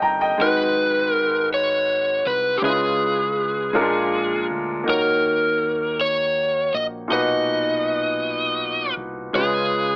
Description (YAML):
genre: slow gospel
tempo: 54 BPM (dotted quarters)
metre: 6/8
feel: straight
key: unclear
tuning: A4 = 440 Hz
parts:
  - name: clear baby grand piano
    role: accompaniment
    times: 0.0-10.0 s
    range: G2 to A#5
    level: -23 LUFS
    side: equal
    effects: none
  - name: fingered electric bass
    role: bass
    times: 0.0-10.0 s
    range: G1 to D#2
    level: -36 LUFS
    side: equal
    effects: none
  - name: overdriven slide guitar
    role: melody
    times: 0.4-10.0 s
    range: G4 to D#5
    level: -20 LUFS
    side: equal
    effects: none
room: light reverb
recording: AM radio sound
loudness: -18 LUFS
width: side -32 dB against mid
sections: 0.0-10.0 A section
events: none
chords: 0.4 G#m7; 2.6 C#7; 3.8 A#7; 4.9 D#m7; 7.1 Bmaj7; 9.3 C#7